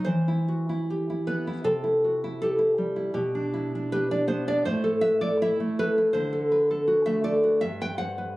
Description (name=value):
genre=romantic piece for solo classical guitar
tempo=80 BPM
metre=2/4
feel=rubato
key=E minor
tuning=A4 = 439 Hz
part: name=nylon-string guitar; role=solo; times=0.0-8.4 s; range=G2 to G5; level=-23 LUFS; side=equal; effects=none
room=little or no reverb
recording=recorded on a phone in the room, club reverb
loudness=-23 LUFS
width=side -18 dB against mid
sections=0.1-8.4 A section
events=none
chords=0.1 Em; 1.6 C; 3.1 G/B; 4.7 A5; 6.2 D7; 7.6 G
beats=| 0.08 0.88 | 1.64 2.40 | 3.15 3.91 | 4.66 5.43 | 6.16 6.88 | 7.63